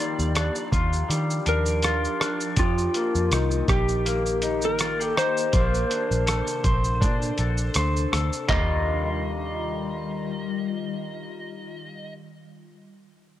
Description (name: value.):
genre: indie pop, bedroom pop.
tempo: 81 BPM.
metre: 4/4.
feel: swing 55% on 16ths.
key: Eb lydian.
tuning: A4 = 441 Hz.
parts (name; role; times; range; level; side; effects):
electric slide guitar; melody; 0.0-12.1 s; F4 to Eb5; -28 LUFS; equal; wide subtle chorus.
electric guitar through a small old amp; accompaniment; 0.0-12.2 s; Eb3 to C5; -29 LUFS; left 3 dB; lush chorus, warbly pitch drift.
ethereal airy pad; sustained chords; 0.0-12.1 s; C3 to A4; -34 LUFS; left 2 dB; ensemble chorus, built-in reverb, phaser.
vintage muted picked electric bass; bass; 0.2-12.1 s; Bb1 to Eb3; -26 LUFS; equal; none.
lo-fi sampler-style drum kit; drums; 0.2-8.7 s; handclaps, hi-hat, kick drum, rim click, shaker, toms; -26 LUFS; equal; none.
room: light reverb.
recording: none.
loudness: -22 LUFS.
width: side -12 dB against mid.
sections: 0.0-8.5 A section; 8.5-11.4 B section.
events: none.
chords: 0.0 Ebmaj9; 2.6 F9sus4; 5.5 Bbmaj9; 8.5 Ebadd9.